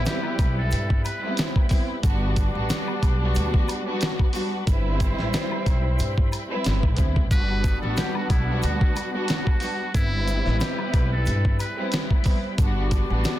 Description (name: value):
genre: hip hop, boom-bap hip-hop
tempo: 91 BPM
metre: 4/4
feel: swing 55% on 16ths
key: unclear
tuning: A4 = 442 Hz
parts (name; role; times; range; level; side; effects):
- warm studio string section; accompaniment; 0.0-13.4 s; G3 to B4; -29 LUFS; right 1 dB; high-pass filter, low-pass filter
- bright tonewheel organ; sustained chords; 0.0-13.4 s; G3 to D6; -38 LUFS; equal; overdrive, chorus vibrato, fast rotary speaker, high-pass filter, low-pass filter
- warm horn section; stabs; 0.0-13.4 s; D3 to D5; -34 LUFS; left 1 dB; high-pass filter, low-pass filter, ping-pong delay
- upright bass; bass; 0.0-13.2 s; G1 to G2; -25 LUFS; equal; none
- trumpet with metal mute; melody; 0.1-1.3, 7.3-11.9 s; E4 to B4; -32 LUFS; equal; high-pass filter, low-pass filter, ping-pong delay
- dusty soul sampler-style drum kit; drums; 0.1-13.4 s; hi-hat, kick drum, snare drum; -23 LUFS; equal; none
- tube shaker and woodblock; percussion; 0.1-13.4 s; none; -40 LUFS; left 5 dB; none
room: little or no reverb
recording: dense, heavily limited modern master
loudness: -21 LUFS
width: side -14 dB against mid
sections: 0.0-13.4 A section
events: none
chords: 0.0 Cmaj7; 2.0 Gmaj7; 4.7 Cmaj7/G; 7.3 Gmaj7; 9.9 Cmaj7/G; 12.6 Gmaj7